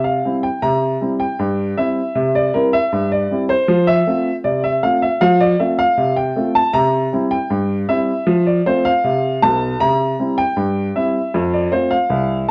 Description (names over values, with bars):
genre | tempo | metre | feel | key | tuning
ragtime piano | 78 BPM | 2/4 | straight | F major | A4 = 444 Hz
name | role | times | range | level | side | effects
warm upright piano | solo | 0.0-12.5 s | B1 to Bb5 | -17 LUFS | equal | none
room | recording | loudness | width
moderate studio reverb, RT60 0.8 s | worn, warbling old tape, cassette tape, warbly pitch drift | -17 LUFS | mono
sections
0.0-12.5 A section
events
none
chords
0.0 C; 3.7 F; 6.7 C; 8.3 F; 9.8 C; 11.3 F